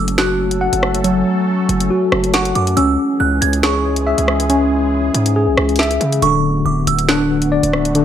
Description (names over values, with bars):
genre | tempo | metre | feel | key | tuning
hip hop, drill | 139 BPM | 4/4 | half-time | F# minor | A4 = 441 Hz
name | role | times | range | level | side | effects
delicate synth tine bell | second line | 0.0-7.9 s | C#6 to G#6 | -21 LUFS | right 8 dB | chorus, ping-pong delay
sweeping resonant pad | sustained chords | 0.0-8.0 s | D3 to A4 | -24 LUFS | right 3 dB | wide subtle chorus
mellow tine electric piano | arpeggios | 0.0-8.0 s | D3 to F#5 | -16 LUFS | left 2 dB | medium stereo tremolo, ping-pong delay
distorted 808-style bass | bass | 0.0-8.0 s | D1 to C#3 | -20 LUFS | right 1 dB | distortion
drill drum kit | drums | 0.1-8.0 s | hi-hat, rim click, snare drum | -19 LUFS | equal | overdrive
room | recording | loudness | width
light reverb | none | -13 LUFS | side -10 dB against mid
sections
0.0-8.0 A section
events
none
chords
0.0 F#m; 2.8 C#m; 6.2 D6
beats
0.18 0.61 | 1.04 1.48 1.91 2.34 | 2.77 3.20 3.63 4.07 | 4.50 4.93 5.36 5.79 | 6.22 6.66 7.09 7.52 | 7.95